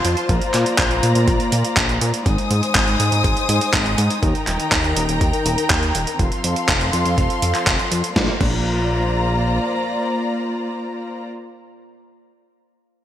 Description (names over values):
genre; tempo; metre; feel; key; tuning
italo disco; 122 BPM; 4/4; straight; Bb major; A4 = 440 Hz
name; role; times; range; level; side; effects
dark studio string section; sustained chords; 0.0-11.3 s; Eb3 to Eb6; -21 LUFS; left 1 dB; none
chorused synth bass; bass; 0.0-9.6 s; Eb1 to Bb2; -21 LUFS; equal; digital delay
dusty soul sampler-style drum kit; drums; 0.0-8.6 s; crash cymbal, handclaps, hi-hat, snare drum; -21 LUFS; right 1 dB; overdrive, studio ambience, gated reverb
electronic kick drum; drums; 0.3-8.6 s; none; -22 LUFS; equal; overdrive, studio ambience
room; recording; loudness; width
moderate plate reverb, RT60 2.8 s; bright 1980s-style digital production; -16 LUFS; side -11 dB against mid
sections
0.0-8.2 A section; 8.2-12.1 B section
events
none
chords
0.3 Bbadd9; 2.3 Ab; 4.2 Eb; 6.2 F; 8.2 Bbadd9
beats
| 0.29 0.78 1.28 1.77 | 2.26 2.75 3.24 3.73 | 4.23 4.72 5.21 5.70 | 6.19 6.69 7.18 7.67 | 8.16 8.65 9.14 9.64 | 10.13 10.62 11.11